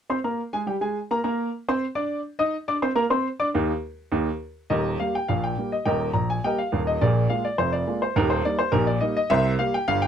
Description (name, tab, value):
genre	ragtime piano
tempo	104 BPM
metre	2/4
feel	straight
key	Eb major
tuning	A4 = 440 Hz
part	clear upright piano	solo	0.1-10.1 s	Eb1 to Eb6	-22 LUFS	equal	none
room	light reverb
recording	close, detailed microphones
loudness	-22 LUFS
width	side -8 dB against mid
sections	0.1-4.7 A section; 4.7-10.1 B section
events	none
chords	0.1 Eb5; 4.7 Eb; 7.0 Bb5; 8.1 Eb; 9.3 C5